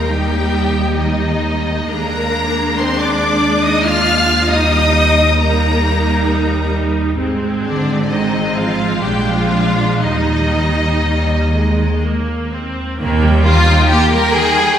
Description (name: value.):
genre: classical, slow romantic movement for string orchestra.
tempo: 59-70 BPM.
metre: 3/4.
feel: rubato.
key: Eb major.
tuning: A4 = 441 Hz.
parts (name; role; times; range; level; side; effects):
rich studio violin section; melody; 0.0-14.8 s; D5 to F6; -20 LUFS; left 2 dB; none.
rich studio violin section; second line; 0.0-14.8 s; D4 to F5; -19 LUFS; left 2 dB; none.
clear studio viola section; accompaniment; 0.0-14.8 s; Eb3 to Eb4; -19 LUFS; right 1 dB; none.
rich studio cello section; bass; 0.0-13.8 s; Eb2 to F4; -21 LUFS; right 1 dB; none.
rich studio double bass section; bass; 0.0-13.8 s; Ab1 to Eb2; -18 LUFS; right 1 dB; none.
room: wet concert hall reverb, RT60 2.0 s.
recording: recorded in a church or concert hall.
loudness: -13 LUFS.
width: side -9 dB against mid.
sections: 0.0-13.0 A section; 13.0-14.8 A section.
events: none.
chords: 0.0 Eb; 1.9 Bb7/Eb; 4.5 Eb; 7.2 Ab; 9.0 Bb7; 10.0 Eb.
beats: 0.10 0.97 | 1.91 2.79 3.65 | 4.51 5.42 6.31 | 7.19 8.09 9.03 | 10.04 11.05 12.03 | 13.00 13.91.